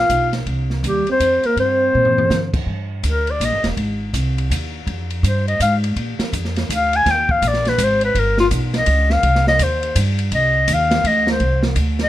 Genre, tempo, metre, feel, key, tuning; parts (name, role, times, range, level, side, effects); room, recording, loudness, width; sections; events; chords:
jazz, small-group swing and bop; 165 BPM; 3/4; swing 64% on 8ths; C minor; A4 = 440 Hz
mellow clarinet; melody; 0.0-12.1 s; F4 to Ab5; -17 LUFS; left 2 dB; plate reverb
breathy trombone; second line; 0.0-2.5 s; G3 to F4; -23 LUFS; right 6 dB
upright bass; bass; 0.0-12.1 s; Eb1 to D3; -20 LUFS; equal
open jazz drum kit; drums; 0.1-12.1 s; crash cymbal, hi-hat, kick drum, ride cymbal, snare drum, toms; -24 LUFS; equal
light reverb; close, detailed microphones; -15 LUFS; side -14 dB against mid
0.0-2.7 A section; 2.7-11.4 B section
drum fill 1.9-2.3; clarinet solo 2.7-12.1
0.5 Cm9; 2.7 Ebmaj7 (rootless); 3.8 Ab; 4.9 Fmadd9; 6.0 Bb; 7.0 Eb5; 8.1 Gaug; 9.2 Cmadd9; 11.4 Csus2